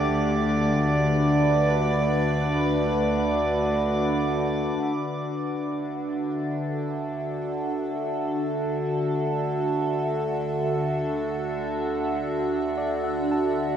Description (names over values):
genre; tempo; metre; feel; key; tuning
ambient; free time; none; none; D major; A4 = 440 Hz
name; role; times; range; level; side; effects
evolving wavetable pad; sustained chords; 0.0-13.8 s; D3 to E5; -24 LUFS; equal; chorus, built-in reverb, phaser
warm chamber cello section; bass; 0.0-13.8 s; D2; -33 LUFS; equal; none
pedal harmonium; drone; 0.0-4.9 s; D3 to A3; -28 LUFS; equal; none
drifting glass-harmonics texture; texture; 0.0-4.9 s; D5 to D6; -31 LUFS; right 3 dB; chorus, built-in reverb
barky tine electric piano; arpeggios; 4.8-13.8 s; D5 to A5; -38 LUFS; right 1 dB; medium stereo tremolo, diffuse ambient delay
room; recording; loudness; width
wet huge ambient reverb, RT60 7.8 s; none; -23 LUFS; side -9 dB against mid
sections
0.0-4.8 A section; 4.8-13.8 B section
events
fade-in on tine electric piano 4.8-13.8; fade-in on cello section 4.8-13.8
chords
0.0 Gsus2/D (rootless); 4.8 Dadd9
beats
free time